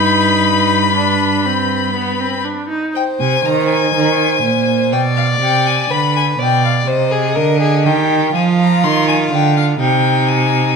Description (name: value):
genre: classical, baroque-style fugue for string quartet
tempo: 61 BPM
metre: 4/4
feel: straight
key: C minor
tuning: A4 = 440 Hz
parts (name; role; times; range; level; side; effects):
- rich violin; melody; 0.0-10.8 s; Eb5 to C6; -17 LUFS; left 8 dB; none
- rich violin; second line; 0.0-10.8 s; Eb4 to D5; -19 LUFS; left 3 dB; none
- rich viola; accompaniment; 0.0-2.9 s; B3 to Eb4; -20 LUFS; right 1 dB; none
- rich cello; bass; 0.0-10.8 s; G2 to F3; -16 LUFS; right 5 dB; none
room: moderate recital hall reverb, RT60 1.8 s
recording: minimal, uncompressed stereo recording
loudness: -12 LUFS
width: side -5 dB against mid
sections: 0.0-3.0 A section; 3.0-10.8 B section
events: none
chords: 0.0 G; 3.0 Cm; 4.9 G/B; 6.9 Cm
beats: 0.96 1.96 | 2.95 3.94 4.92 5.90 | 6.88 7.86 8.84 9.80